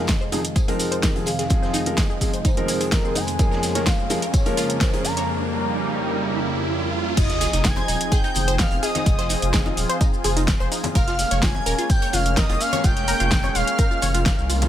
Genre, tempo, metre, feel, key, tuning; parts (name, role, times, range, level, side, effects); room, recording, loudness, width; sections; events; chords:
progressive house; 127 BPM; 4/4; straight; F minor; A4 = 439 Hz
expressive synth lead; melody; 0.0-14.5 s; Bb4 to Bb5; -28 LUFS; equal; chorus, sidechain pumping, digital delay
lush unison pad; sustained chords; 0.0-14.7 s; F2 to Ab4; -27 LUFS; equal; chorus, sidechain pumping
wide unison pluck; arpeggios; 0.0-14.7 s; Eb4 to F6; -30 LUFS; equal; sidechain pumping, ping-pong delay
felt-muted upright piano; stabs; 0.0-5.0 s; F3 to Bb4; -27 LUFS; equal; sidechain pumping, low-pass filter, ping-pong delay
riser and sub drop; sound effects; 2.6-9.1 s; -31 LUFS; right 2 dB
deep house drum kit; drums; 0.1-14.7 s; crash cymbal, hi-hat, shaker, snare drum; -26 LUFS; equal; sidechain pumping on hats, sidechain pumping on perc, sidechain pumping on cymbals
electronic kick drum; drums; 0.1-14.4 s; -21 LUFS; equal
raw garage drum kit; drums; 0.1-14.7 s; hi-hat, snare drum, tambourine; -36 LUFS; equal
soft supersaw; second line; 7.2-14.5 s; Eb6 to Ab6; -32 LUFS; right 1 dB; phaser, sidechain pumping, ping-pong delay
saturated sub bass; bass; 7.2-14.7 s; Eb1 to C2; -24 LUFS; equal; tube saturation, sidechain pumping
congas; percussion; 7.8-14.7 s; -32 LUFS; left 5 dB; sidechain pumping on perc
small room ambience; -18 LUFS; side -11 dB against mid
0.0-7.2 A section; 7.2-14.7 B section
build-up 0.0-7.2; filter sweep on analog synth lead 0.0-7.2; riser 2.6-7.2; break 5.3-7.2; drop 7.2-14.7; impact 7.2-9.1
0.0 Fm7; 3.4 Bbm7/F; 7.2 Fm7; 11.0 Bbm7